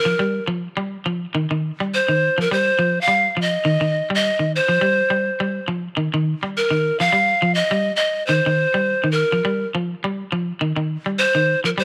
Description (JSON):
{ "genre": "afrobeat", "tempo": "104 BPM", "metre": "4/4", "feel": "swing 56% on 16ths", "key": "unclear", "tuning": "A4 = 439 Hz", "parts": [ { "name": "breathy pan flute", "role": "melody", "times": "0.0-11.8 s", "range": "Bb4 to F5", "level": "-20 LUFS", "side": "equal", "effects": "none" }, { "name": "electric guitar at the edge of break-up", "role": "arpeggios", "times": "0.1-11.8 s", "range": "Eb3 to G3", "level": "-24 LUFS", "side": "equal", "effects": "subtle chorus" } ], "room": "light reverb, small room reverb", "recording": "none", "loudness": "-20 LUFS", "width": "mono", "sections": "0.0-11.8 A section", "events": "none", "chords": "0.0 Ebadd9" }